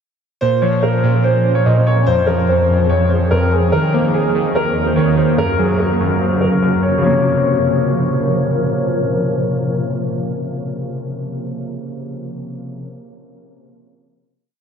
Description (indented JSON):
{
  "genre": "hip hop, drill",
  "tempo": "145 BPM",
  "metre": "4/4",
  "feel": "half-time",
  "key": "Bb minor",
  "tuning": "A4 = 440 Hz",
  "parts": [
    { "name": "dark concert grand piano", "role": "melody", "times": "0.4-8.2 s", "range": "Ab4 to Eb5", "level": "-18 LUFS", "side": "equal", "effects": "wide subtle chorus, ping-pong delay" },
    { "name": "warbly lo-fi synth keys", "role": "accompaniment", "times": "0.4-12.9 s", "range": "F2 to Bb3", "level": "-17 LUFS", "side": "equal", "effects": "chorus, phaser" },
    { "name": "granular cloud pad", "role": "sustained chords", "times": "1.1-11.1 s", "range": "Eb2 to Db5", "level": "-22 LUFS", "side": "equal", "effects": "built-in reverb" }
  ],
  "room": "wet huge ambient reverb, RT60 8.4 s",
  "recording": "dreamy mix soaked in reverb, low-pass filter",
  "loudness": "-14 LUFS",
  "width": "side -7 dB against mid",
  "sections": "0.4-7.0 breakdown; 7.0-10.3 final chord",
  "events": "none",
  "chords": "0.4 Bbmadd9; 2.1 Fm; 3.7 Ebm; 5.4 Gb; 7.0 Bbmadd9"
}